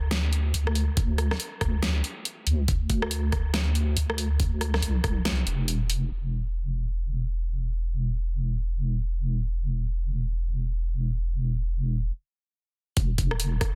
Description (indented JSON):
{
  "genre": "deep dubstep",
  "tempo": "140 BPM",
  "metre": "4/4",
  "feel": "swing 61% on 16ths, half-time",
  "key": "unclear",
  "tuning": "A4 = 440 Hz",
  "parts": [
    { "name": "deep soft wobble bass", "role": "bass", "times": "0.0-13.6 s", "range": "E1 to D2", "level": "-28 LUFS", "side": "equal", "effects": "chorus" },
    { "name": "dubstep drum kit", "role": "drums", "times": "0.1-6.0, 13.0-13.7 s", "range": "hi-hat, rim click, snare drum", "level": "-32 LUFS", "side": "equal", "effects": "low-pass filter on hats, soft clipping on snare, low-pass filter on snare" },
    { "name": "electronic kick drum", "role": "drums", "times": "1.0-5.1, 13.0-13.7 s", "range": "none", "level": "-29 LUFS", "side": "equal", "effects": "none" }
  ],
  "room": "little or no reverb",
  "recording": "dense, heavily limited modern master",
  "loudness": "-27 LUFS",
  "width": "mono",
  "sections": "0.0-6.1 A section; 6.1-13.0 B section",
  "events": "kick drops out 5.3-6.1; stop 12.1-13.0",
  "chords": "none",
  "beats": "0.11 0.54 | 0.97 1.40 1.83 2.25 | 2.68 3.11 3.54 3.97 | 4.40 4.83 5.25 5.68 | 6.11 6.54 6.97 7.40 | 7.83 8.26 8.68 9.11 | 9.54 9.97 10.40 10.83 | 11.26 11.68 12.11 12.54 | 12.97 13.40"
}